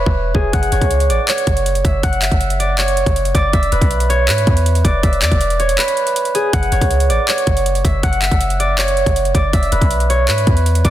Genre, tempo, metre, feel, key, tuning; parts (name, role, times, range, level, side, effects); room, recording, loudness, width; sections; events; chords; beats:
hip hop, trap; 160 BPM; 4/4; half-time; A4 = 440 Hz
concert harp; melody; 0.0-10.9 s; G#4 to F#5; -17 LUFS; right 1 dB; low-pass filter
clean 808-style bass; bass; 0.0-10.9 s; D1 to G#2; -17 LUFS; equal
trap drum kit; drums; 0.1-10.9 s; handclaps, hi-hat, kick drum; -18 LUFS; equal
digital ambience; dense, heavily limited modern master; -13 LUFS; side -12 dB against mid
0.0-10.9 A section
break 0.0-0.5; kick muted 5.8-6.5
0.0 E; 0.5 F#5; 3.5 E5; 6.5 F#5; 9.5 E
0.16 | 0.53 0.91 1.28 1.66 | 2.03 2.41 2.78 3.16 | 3.53 3.91 4.28 4.66 | 5.03 5.41 5.78 6.16 | 6.53 6.91 7.28 7.66 | 8.03 8.41 8.78 9.16 | 9.53 9.91 10.28 10.66